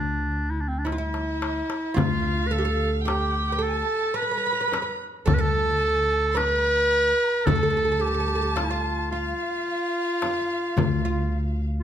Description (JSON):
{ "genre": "Turkish makam ensemble", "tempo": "109 BPM (eighths)", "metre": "10/8", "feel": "straight", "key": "D makam huseyni", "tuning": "A4 = 438 Hz", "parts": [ { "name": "bright clarinet", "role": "melody", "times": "0.0-11.8 s", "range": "C4 to B4-27c", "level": "-25 LUFS", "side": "equal", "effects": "none" }, { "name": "oud", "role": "second line", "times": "0.0-11.6 s", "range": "E4-30c to B4-30c", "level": "-32 LUFS", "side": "right 4 dB", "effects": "none" }, { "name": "upright bass", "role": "bass", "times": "0.0-11.8 s", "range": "D2", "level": "-27 LUFS", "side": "equal", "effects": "none" }, { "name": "darbuka", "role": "percussion", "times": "0.3-11.5 s", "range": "none", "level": "-29 LUFS", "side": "left 7 dB", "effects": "none" }, { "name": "dark chamber violin section", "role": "second line", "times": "0.9-11.6 s", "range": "E5-30c to C6", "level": "-31 LUFS", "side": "right 1 dB", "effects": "none" }, { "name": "frame drum", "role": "percussion", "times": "0.9-11.0 s", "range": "none", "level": "-30 LUFS", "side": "right 2 dB", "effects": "none" } ], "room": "moderate recital hall reverb, RT60 1.5 s", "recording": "close, detailed microphones", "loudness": "-22 LUFS", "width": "side -9 dB against mid", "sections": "0.0-2.0 A section; 2.0-11.8 B section", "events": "drum fill 0.9-2.0", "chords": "none" }